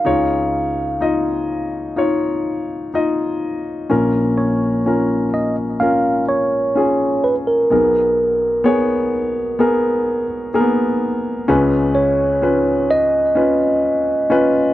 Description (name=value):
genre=pop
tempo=63 BPM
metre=4/4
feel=straight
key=unclear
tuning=A4 = 440 Hz
part: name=mellow tine electric piano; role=melody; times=0.0-14.7 s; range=A#4 to E#5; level=-18 LUFS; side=right 1 dB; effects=phaser, tape echo
part: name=warm grand piano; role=accompaniment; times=0.0-14.7 s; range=A#1 to D#5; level=-17 LUFS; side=left 1 dB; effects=none
room=little or no reverb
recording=dry, close 1970s-style studio recording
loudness=-15 LUFS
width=side -14 dB against mid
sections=0.0-3.9 A section; 3.9-14.7 B section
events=none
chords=0.0 C#add9; 3.9 A#m; 7.7 G#madd9/B; 11.5 C#7